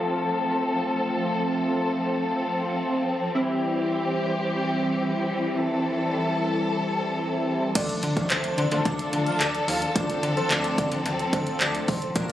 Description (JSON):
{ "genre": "dance-pop", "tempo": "109 BPM", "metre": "4/4", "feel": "straight", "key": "D minor", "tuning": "A4 = 441 Hz", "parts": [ { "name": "chorused polysynth", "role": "accompaniment", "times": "0.0-12.3 s", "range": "E3 to C5", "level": "-27 LUFS", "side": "equal", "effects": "sidechain pumping, low-pass filter" }, { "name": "warm studio string section", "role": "sustained chords", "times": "0.0-12.3 s", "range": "E3 to Bb4", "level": "-27 LUFS", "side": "left 1 dB", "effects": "sidechain pumping, low-pass filter" }, { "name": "airy dreamy lead", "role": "melody", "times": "7.8-12.3 s", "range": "C5 to F5", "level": "-31 LUFS", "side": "equal", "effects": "chorus, tape echo" }, { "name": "slap-like FM bass", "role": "bass", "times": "7.8-12.3 s", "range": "Bb1 to D3", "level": "-28 LUFS", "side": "equal", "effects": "sidechain pumping" }, { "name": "punchy analog drum machine", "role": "drums", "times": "7.8-12.3 s", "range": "crash cymbal, handclaps, hi-hat, kick drum", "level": "-26 LUFS", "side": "equal", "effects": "none" } ], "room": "moderate digital room reverb, RT60 1.3 s", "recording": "recorded on a phone in the room, club reverb", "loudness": "-23 LUFS", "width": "side -12 dB against mid", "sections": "0.0-7.8 A section; 7.8-12.3 B section", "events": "drop 7.8-12.3", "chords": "0.0 F; 3.4 C; 7.8 Dm", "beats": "0.05 0.60 | 1.15 1.70 2.25 2.80 | 3.35 3.90 4.45 5.00 | 5.55 6.10 6.65 7.20 | 7.75 8.30 8.85 9.40 | 9.96 10.51 11.06 11.61 | 12.16" }